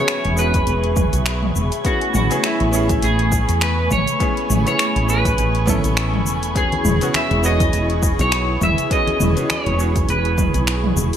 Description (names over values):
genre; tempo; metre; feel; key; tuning
sunset chillout; 102 BPM; 4/4; swing 57% on 16ths; A major; A4 = 440 Hz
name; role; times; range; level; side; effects
clean electric guitar; melody; 0.0-10.9 s; E4 to E5; -22 LUFS; equal; lush chorus, ping-pong delay
bright concert grand piano; accompaniment; 0.0-11.2 s; B3 to A4; -26 LUFS; moving between left 6 dB and right 6 dB; auto-pan, ping-pong delay
airy breathy pad; sustained chords; 0.0-11.2 s; A3 to C#6; -26 LUFS; left 1 dB; chorus
downlifter; sound effects; 0.0-1.8 s; none; barely audible; none; none
wind-like tuned noise texture; texture; 0.0-11.2 s; G#5; -32 LUFS; right 5 dB; built-in reverb, wide subtle chorus
deep house drum kit; drums; 0.1-11.2 s; finger snaps, hi-hat, shaker, toms; -23 LUFS; right 1 dB; gated reverb
woody fretless electric bass; bass; 0.2-11.1 s; E1 to E2; -20 LUFS; equal; analog chorus
electronic kick drum; drums; 0.5-10.5 s; none; -22 LUFS; equal; none
congas; percussion; 6.7-11.1 s; none; -28 LUFS; left 3 dB; none
room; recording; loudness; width
light reverb; bright 1980s-style digital production; -16 LUFS; side -9 dB against mid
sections
0.0-11.2 A section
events
none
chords
0.0 E6; 1.8 Amaj9; 6.6 E6